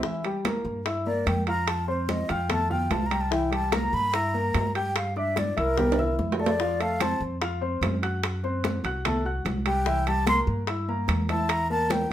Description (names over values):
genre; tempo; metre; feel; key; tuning
Afro-Cuban jazz; 147 BPM; 4/4; straight; C mixolydian; A4 = 440 Hz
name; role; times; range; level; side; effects
warm grand piano; accompaniment; 0.0-12.0 s; E3 to G6; -29 LUFS; left 1 dB; none
bongos; percussion; 0.0-12.1 s; none; -34 LUFS; left 8 dB; none
congas; percussion; 0.0-12.1 s; none; -33 LUFS; equal; none
timbales; percussion; 0.2-12.1 s; none; -31 LUFS; right 6 dB; none
upright bass; bass; 0.6-12.1 s; C2 to G2; -29 LUFS; equal; none
breathy mellow silver concert flute; melody; 1.1-12.1 s; Bb4 to C6; -27 LUFS; equal; none
room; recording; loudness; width
moderate studio reverb, RT60 0.6 s; minimal, uncompressed stereo recording; -24 LUFS; side -11 dB against mid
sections
0.0-12.1 A section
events
flute solo 0.0-12.1; drum fill 5.8-6.6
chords
0.0 Gm6; 1.7 Fadd9; 3.3 C7; 5.0 G5; 5.8 C6; 6.6 F; 8.2 F#dim; 9.9 C7; 11.5 Gm69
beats
| 0.04 0.45 0.86 1.27 | 1.68 2.09 2.50 2.91 | 3.32 3.73 4.14 4.55 | 4.96 5.37 5.78 6.19 | 6.60 7.00 7.41 7.82 | 8.23 8.64 9.05 9.46 | 9.87 10.27 10.68 11.09 | 11.50 11.90